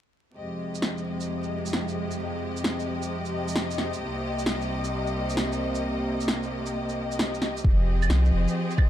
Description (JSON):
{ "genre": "future garage", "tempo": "132 BPM", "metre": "4/4", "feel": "swing 67% on 16ths", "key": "F minor", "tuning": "A4 = 436 Hz", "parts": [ { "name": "bright studio string section", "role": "sustained chords", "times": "0.4-8.9 s", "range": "C2 to Eb5", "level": "-28 LUFS", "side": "equal", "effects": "sidechain pumping" }, { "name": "electronic shaker, snare drum and claves", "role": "drums", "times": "0.7-8.9 s", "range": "none", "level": "-30 LUFS", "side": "equal", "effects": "none" }, { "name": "warm sub bass", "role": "bass", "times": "7.6-8.5 s", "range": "F1 to C2", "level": "-22 LUFS", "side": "equal", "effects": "sidechain pumping" }, { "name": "electronic kick drum", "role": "drums", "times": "7.6-8.9 s", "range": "none", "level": "-20 LUFS", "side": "equal", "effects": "none" } ], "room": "moderate lush hall reverb, RT60 1.9 s", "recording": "dark, warm production, vinyl crackle", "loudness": "-25 LUFS", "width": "side -12 dB against mid", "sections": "0.4-7.6 A section; 7.6-8.9 B section", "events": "none", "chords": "0.4 Fm7; 4.0 Cm7; 7.6 Fm7" }